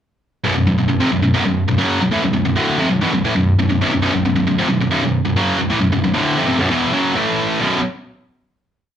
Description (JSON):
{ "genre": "metal", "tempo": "134 BPM", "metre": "4/4", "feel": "straight", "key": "B minor", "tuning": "A4 = 440 Hz", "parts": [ { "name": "high-gain distorted guitar", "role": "solo", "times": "0.4-7.8 s", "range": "B1 to A3", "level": "-14 LUFS", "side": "equal", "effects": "distortion" } ], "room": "moderate large studio reverb, RT60 0.8 s", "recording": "band playing live in one room", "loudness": "-15 LUFS", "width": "side -9 dB against mid", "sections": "0.4-7.6 riff; 7.6-9.0 final chord", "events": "none", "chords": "0.4 Bm; 7.2 A5; 7.6 B5", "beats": "| 0.44 0.89 1.34 1.79 | 2.24 2.68 3.13 3.58 | 4.03 4.47 4.92 5.37 | 5.81 6.26 6.71 7.15 | 7.60" }